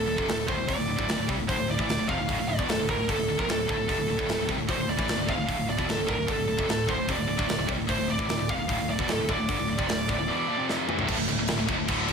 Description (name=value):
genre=heavy metal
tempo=150 BPM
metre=4/4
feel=straight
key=D minor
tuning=A4 = 440 Hz
part: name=high-gain lead guitar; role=melody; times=0.0-10.7 s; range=A4 to F5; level=-30 LUFS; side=right 2 dB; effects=distortion
part: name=heavy high-gain guitar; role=riff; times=0.0-12.1 s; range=D2 to G3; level=-32 LUFS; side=left 17 dB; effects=distortion
part: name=scooped high-gain guitar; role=riff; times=0.0-12.1 s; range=D2 to G3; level=-31 LUFS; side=right 8 dB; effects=distortion
part: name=picked electric bass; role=bass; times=0.0-12.1 s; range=D1 to C2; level=-35 LUFS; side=left 1 dB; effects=none
part: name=tight metal drum kit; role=drums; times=0.2-12.1 s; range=crash cymbal, hi-hat, kick drum, snare drum, toms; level=-31 LUFS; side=equal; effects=none
part: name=heavy high-gain guitar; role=riff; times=11.1-12.1 s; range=D2 to F3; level=-33 LUFS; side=equal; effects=distortion
room=light reverb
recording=none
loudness=-24 LUFS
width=side -6 dB against mid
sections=0.0-11.1 A section; 11.1-12.1 B section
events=drum fill 10.7-11.1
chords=0.0 Dm